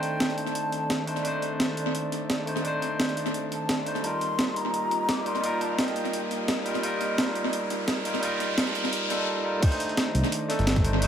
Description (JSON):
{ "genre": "liquid drum and bass", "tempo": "172 BPM", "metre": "4/4", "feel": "swing 53% on 16ths", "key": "C dorian", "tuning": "A4 = 440 Hz", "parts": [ { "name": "breathy concert flute", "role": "melody", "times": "0.0-1.1, 3.5-6.4 s", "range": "G5 to D6", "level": "-32 LUFS", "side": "left 2 dB", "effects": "tape echo" }, { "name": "barky tine electric piano", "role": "accompaniment", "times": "0.0-11.1 s", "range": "G3 to C5", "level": "-30 LUFS", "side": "equal", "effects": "analog delay" }, { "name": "airy breathy pad", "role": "sustained chords", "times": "0.0-11.1 s", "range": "Eb3 to Eb5", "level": "-34 LUFS", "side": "equal", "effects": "chorus" }, { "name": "breakbeat sampler-style drum kit", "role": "drums", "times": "0.0-11.1 s", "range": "crash cymbal, hi-hat, snare drum", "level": "-29 LUFS", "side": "equal", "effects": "small room reverb, tape echo" }, { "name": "riser", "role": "sound effects", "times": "1.3-9.3 s", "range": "none", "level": "-36 LUFS", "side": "equal", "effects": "none" }, { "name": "dusty soul sampler-style drum kit", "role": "drums", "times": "9.6-11.1 s", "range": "hi-hat, snare drum", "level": "-36 LUFS", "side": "left 1 dB", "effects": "high-pass filter on hats, small room reverb, high-pass filter on snare, tape echo" }, { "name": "electronic kick drum", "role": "drums", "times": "9.6-10.8 s", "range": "none", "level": "-22 LUFS", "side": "equal", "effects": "overdrive, small room reverb" }, { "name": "smooth synth bass", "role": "bass", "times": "10.1-11.1 s", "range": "G1 to C2", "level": "-24 LUFS", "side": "equal", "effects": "none" } ], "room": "wet spring reverb, RT60 2.1 s", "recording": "echo-heavy mix", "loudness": "-24 LUFS", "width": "side -9 dB against mid", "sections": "0.0-9.6 A section; 9.6-11.1 B section", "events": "build-up 0.0-9.6; filter sweep on analog synth pad 0.0-9.6; riser 1.3-9.3; drop 9.6-11.1", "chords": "0.0 Cm69; 4.0 F9sus4; 9.6 Cm69", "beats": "0.20 0.55 0.90 | 1.25 1.60 1.95 2.30 | 2.65 3.00 3.35 3.69 | 4.04 4.39 4.74 5.09 | 5.44 5.79 6.13 6.48 | 6.83 7.18 7.53 7.88 | 8.23 8.58 8.93 9.28 | 9.62 9.97 10.32 10.67 | 11.02" }